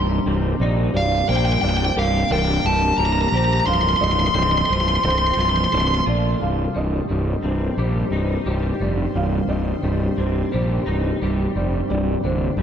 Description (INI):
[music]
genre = post-rock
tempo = 88 BPM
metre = 4/4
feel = straight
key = C dorian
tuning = A4 = 438 Hz
[part]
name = shimmering ambient pad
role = sustained chords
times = 0.0-12.6 s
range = C3 to C5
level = -30 LUFS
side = equal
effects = chorus, built-in reverb
[part]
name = felt-muted upright piano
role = arpeggios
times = 0.0-12.6 s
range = Bb4 to F5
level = -30 LUFS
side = right 3 dB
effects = slapback echo
[part]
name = twelve-string electric guitar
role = arpeggios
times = 0.0-12.6 s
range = C2 to G4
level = -26 LUFS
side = left 2 dB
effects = ensemble chorus, slapback echo
[part]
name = fuzz fingered electric bass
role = bass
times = 0.0-12.6 s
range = C1 to Bb1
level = -21 LUFS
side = equal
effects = overdrive
[part]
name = smooth overdriven lead guitar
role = melody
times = 1.0-6.0 s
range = F5 to C6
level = -21 LUFS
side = equal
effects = slapback echo
[sound]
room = moderate lush hall reverb, RT60 2.6 s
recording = big arena sound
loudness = -18 LUFS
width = side -8 dB against mid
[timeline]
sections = 0.0-6.4 A section; 6.4-12.6 B section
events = none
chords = 0.0 Cm; 0.9 Gm/C; 3.7 F/C; 6.4 Cm; 11.9 Gm/C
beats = 0.26 | 0.94 1.63 2.31 2.99 | 3.68 4.36 5.04 5.73 | 6.41 7.10 7.78 8.47 | 9.15 9.84 10.52 11.21 | 11.89 12.58